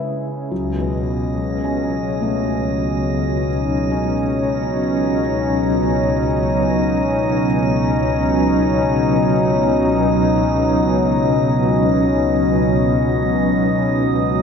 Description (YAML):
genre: ambient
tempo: free time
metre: none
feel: none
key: unclear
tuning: A4 = 440 Hz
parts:
  - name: warm analog pad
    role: sustained chords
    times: 0.0-14.4 s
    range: C#2 to E4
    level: -17 LUFS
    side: equal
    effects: chorus, tremolo
  - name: felt-muted upright piano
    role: arpeggios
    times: 0.0-14.4 s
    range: F#3 to G#5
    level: -29 LUFS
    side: left 2 dB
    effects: analog delay
  - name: analog drone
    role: drone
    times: 0.0-14.4 s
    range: C#3 to G#4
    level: -27 LUFS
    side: right 1 dB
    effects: chorus
  - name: drifting glass-harmonics texture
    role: texture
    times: 0.9-14.4 s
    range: D#5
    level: -24 LUFS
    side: left 4 dB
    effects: chorus, built-in reverb
room: wet spring reverb, RT60 2.7 s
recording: echo-heavy mix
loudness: -16 LUFS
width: side -6 dB against mid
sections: 0.0-14.4 A section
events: none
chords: 0.0 C#m7; 0.5 Badd9/C#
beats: free time